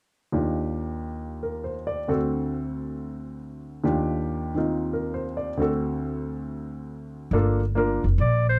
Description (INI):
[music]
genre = jazz, small-group swing and bop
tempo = 137 BPM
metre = 4/4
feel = swing 66% on 8ths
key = unclear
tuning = A4 = 441 Hz
[part]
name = warm baby grand piano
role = accompaniment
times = 0.3-8.0 s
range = D2 to D5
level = -28 LUFS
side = equal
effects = none
[part]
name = upright bass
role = bass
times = 7.3-8.6 s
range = F1 to Bb1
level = -24 LUFS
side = equal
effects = none
[part]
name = clear clarinet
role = melody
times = 8.2-8.6 s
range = C5 to D5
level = -26 LUFS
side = equal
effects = none
[sound]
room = light reverb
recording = dry, close 1970s-style studio recording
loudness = -27 LUFS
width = mono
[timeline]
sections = 0.3-7.3 A section; 7.3-8.6 B section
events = none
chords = 0.3 Ebmaj9; 2.1 D7; 3.8 Ebmaj9; 5.6 D7; 7.3 Gm9